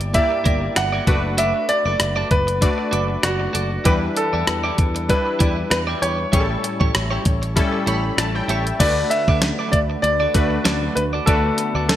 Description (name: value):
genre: 1980s-style pop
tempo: 97 BPM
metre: 4/4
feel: swing 55% on 16ths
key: unclear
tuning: A4 = 442 Hz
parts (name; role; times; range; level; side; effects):
- clear baby grand piano; melody; 0.0-12.0 s; F#4 to F#5; -22 LUFS; equal; digital delay
- warm analog keys; accompaniment; 0.0-12.0 s; G2 to B5; -24 LUFS; left 2 dB; chorus
- clean electric guitar; riff; 0.0-11.9 s; E4 to D5; -28 LUFS; right 3 dB; wide subtle chorus, digital delay
- sustaining fretless electric bass; bass; 0.0-12.0 s; F#1 to E2; -24 LUFS; equal; none
- clean 12-bit digital drum machine; drums; 0.0-12.0 s; crash cymbal, hi-hat, kick drum, rim click, snare drum; -20 LUFS; equal; gated reverb
- phased analog pad; sustained chords; 8.8-12.0 s; D3 to D4; -31 LUFS; equal; phaser, chorus
room: moderate plate reverb, RT60 1.7 s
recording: bright 1980s-style digital production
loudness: -17 LUFS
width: side -12 dB against mid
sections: 0.0-8.8 A section; 8.8-12.0 B section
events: synth keys fill 7.6-8.8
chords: 0.0 Gm6; 1.1 Bm7/F#; 3.9 Em7; 6.3 A7; 8.8 Bm7/D